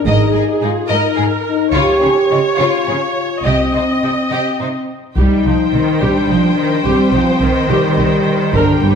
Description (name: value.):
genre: cinematic, epic orchestral film score.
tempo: 71 BPM (dotted quarters).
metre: 6/8.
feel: straight.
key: C minor.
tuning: A4 = 441 Hz.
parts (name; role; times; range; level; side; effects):
warm symphonic viola section; accompaniment; 0.0-8.9 s; C4 to Eb5; -20 LUFS; right 1 dB; none.
mellow French horn section; sustained chords; 0.0-9.0 s; G3 to G4; -17 LUFS; left 3 dB; none.
warm symphonic violin section; second line; 0.1-9.0 s; Ab3 to Eb5; -21 LUFS; left 3 dB; none.
rich symphonic cello section; bass; 0.1-9.0 s; Ab2 to G3; -19 LUFS; right 3 dB; none.
warm symphonic double bass section; bass; 0.1-8.9 s; G1 to Db2; -19 LUFS; right 3 dB; none.
rich symphonic violin section; melody; 5.2-9.0 s; G5; -25 LUFS; left 2 dB; none.
taiko ensemble; drums; 5.2-9.0 s; none; -18 LUFS; equal; none.
room: moderate scoring stage reverb, RT60 1.7 s.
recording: none.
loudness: -12 LUFS.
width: side -6 dB against mid.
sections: 0.0-5.2 A section; 5.2-9.0 A section.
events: none.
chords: 0.0 Absus2; 1.7 Db; 3.5 Cm.